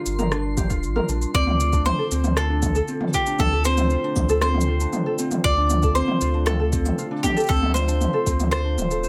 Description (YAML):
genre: folktronica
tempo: 117 BPM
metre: 4/4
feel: straight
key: D minor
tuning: A4 = 440 Hz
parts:
  - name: warm analog pad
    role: sustained chords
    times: 0.0-9.1 s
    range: D3 to Bb4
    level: -33 LUFS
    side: equal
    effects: chorus, plate reverb
  - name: ukulele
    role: arpeggios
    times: 0.0-9.1 s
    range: C4 to C5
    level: -30 LUFS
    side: equal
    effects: delay, plate reverb
  - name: twinkling granular texture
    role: texture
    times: 0.0-1.4 s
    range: C6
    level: -43 LUFS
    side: equal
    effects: built-in reverb, plate reverb
  - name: warm sub bass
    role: bass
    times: 0.1-9.1 s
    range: D1 to D2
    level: -25 LUFS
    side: equal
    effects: none
  - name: organic electronic drum kit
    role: drums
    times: 0.1-9.1 s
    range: cabasa, rim click, toms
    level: -29 LUFS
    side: equal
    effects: none
  - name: electronic kick drum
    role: drums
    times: 0.6-8.4 s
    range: none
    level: -28 LUFS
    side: equal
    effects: none
  - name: bowl-back mandolin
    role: melody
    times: 1.3-9.1 s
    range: G4 to D5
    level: -27 LUFS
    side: equal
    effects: delay, plate reverb
room: light reverb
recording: none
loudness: -21 LUFS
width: mono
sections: 0.0-1.3 A section; 1.3-9.1 B section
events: none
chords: 0.0 Gm7; 1.3 Dm7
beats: 0.32 0.83 | 1.34 1.86 2.37 2.88 | 3.39 3.91 4.42 4.93 | 5.45 5.96 6.47 6.98 | 7.50 8.01 8.52 9.04